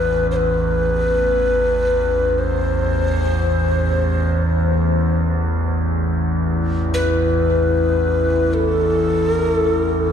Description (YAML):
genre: world meditative, free-time meditation music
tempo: free time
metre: none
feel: none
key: A minor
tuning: A4 = 440 Hz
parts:
  - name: breathy mellow Native American-style cedar flute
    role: melody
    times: 0.0-10.1 s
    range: A4 to C5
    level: -19 LUFS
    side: left 2 dB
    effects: tape echo
  - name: overtone-sweeping drone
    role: drone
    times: 0.0-10.1 s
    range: A1 to E2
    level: -19 LUFS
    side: right 1 dB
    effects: chorus, built-in reverb
  - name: glass harmonica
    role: texture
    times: 6.5-10.1 s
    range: E4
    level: -24 LUFS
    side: left 3 dB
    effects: stereo widening
room: wet church reverb, RT60 2.6 s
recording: dark, warm production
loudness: -16 LUFS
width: side -8 dB against mid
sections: 0.0-10.1 A section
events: none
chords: none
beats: free time